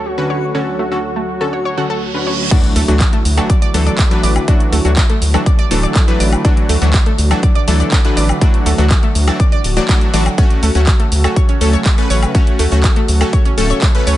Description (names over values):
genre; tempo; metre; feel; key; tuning
progressive house; 122 BPM; 4/4; straight; D major; A4 = 442 Hz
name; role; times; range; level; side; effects
wide unison lead; melody; 0.0-2.4 s; F#4; -23 LUFS; equal; sidechain pumping, tape echo
warm analog pad; sustained chords; 0.0-14.2 s; D2 to C#5; -24 LUFS; right 1 dB; chorus, sidechain pumping
analog pluck; arpeggios; 0.0-14.1 s; A3 to D5; -23 LUFS; right 1 dB; chorus, sidechain pumping, tape echo
backwards swelling texture; texture; 0.0-2.5 s; D4 to C#6; -38 LUFS; equal; none
supersaw stab; stabs; 0.2-14.2 s; D3 to B4; -19 LUFS; left 1 dB; sidechain pumping, tape echo
reverse cymbal and impact; sound effects; 1.8-4.5 s; none; -24 LUFS; right 2 dB; none
big-room dance drum kit; drums; 2.5-14.2 s; crash cymbal, handclaps, hi-hat, shaker, woodblock; -21 LUFS; equal; none
electronic kick drum; drums; 2.5-13.9 s; none; -12 LUFS; equal; none
round analog bass; bass; 2.8-14.2 s; D1 to D2; -14 LUFS; equal; sidechain pumping
room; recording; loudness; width
digital ambience; nothing above 10.9 kHz; -11 LUFS; side -14 dB against mid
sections
0.0-2.5 A section; 2.5-14.2 B section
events
filter sweep on analog synth pad 0.0-2.5; filter sweep 0.0-2.5; reverse cymbal 1.8-2.5; drop 2.5-14.2; impact 2.5-4.5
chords
0.0 F#m/D; 2.5 Dadd9; 10.4 F#m/D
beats
0.05 | 0.55 1.04 1.53 2.02 | 2.51 3.00 3.50 3.99 | 4.48 4.97 5.46 5.96 | 6.45 6.94 7.43 7.92 | 8.41 8.91 9.40 9.89 | 10.38 10.87 11.37 11.86 | 12.35 12.84 13.33 13.82